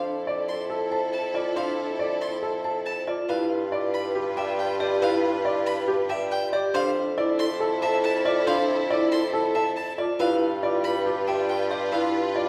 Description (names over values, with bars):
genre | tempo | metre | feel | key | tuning
classical, minimalist pattern music | 139 BPM | 4/4 | straight | unclear | A4 = 440 Hz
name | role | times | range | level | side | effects
bright grand piano | melody | 0.0-12.5 s | G4 to A5 | -30 LUFS | equal | none
rich studio violin section | sustained chords | 0.0-12.5 s | E4 to B4 | -35 LUFS | equal | none
vibraphone with hard mallets | arpeggios | 0.0-12.5 s | D4 to D5 | -31 LUFS | equal | none
warm bassoon | bass | 0.0-12.5 s | F2 to G2 | -30 LUFS | equal | none
clear violin | arpeggios | 0.5-12.1 s | E5 to C6 | -36 LUFS | equal | none
room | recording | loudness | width
wet scoring stage reverb, RT60 1.8 s | heard from further back in the room | -25 LUFS | mono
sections
0.0-12.5 A section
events
none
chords
0.0 Fmaj7; 3.3 G7; 6.7 Fmaj7; 10.2 G7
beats
0.27 0.70 1.13 | 1.56 2.00 2.43 2.86 | 3.29 3.72 4.15 4.59 | 5.02 5.45 5.88 6.31 | 6.74 7.18 7.61 8.04 | 8.47 8.90 9.33 9.77 | 10.20 10.63 11.06 11.49 | 11.92 12.36